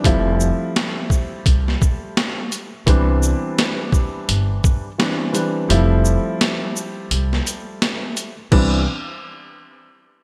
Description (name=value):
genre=hip hop, boom-bap hip-hop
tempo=85 BPM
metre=4/4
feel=swing 61% on 16ths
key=C major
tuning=A4 = 440 Hz
part: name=dark concert grand piano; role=accompaniment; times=0.0-8.8 s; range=E3 to E4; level=-25 LUFS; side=equal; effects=cassette tape, high-pass filter, low-pass filter
part: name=upright bass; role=bass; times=0.0-8.8 s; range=F1 to C2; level=-21 LUFS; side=equal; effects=none
part: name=boom bap sampler-style drum kit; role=drums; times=0.0-8.7 s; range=crash cymbal, hi-hat, kick drum, shaker, snare drum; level=-21 LUFS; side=equal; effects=gated reverb
room=light reverb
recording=bright 1980s-style digital production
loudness=-19 LUFS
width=mono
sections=0.0-8.5 A section; 8.5-10.2 B section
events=kick muted 5.7-8.5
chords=0.0 Fmaj9; 2.9 Cmaj9; 5.7 Fmaj9; 8.5 Cmaj9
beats=| 0.05 0.75 1.46 2.17 | 2.87 3.58 4.28 4.99 | 5.70 6.40 7.11 7.81 | 8.52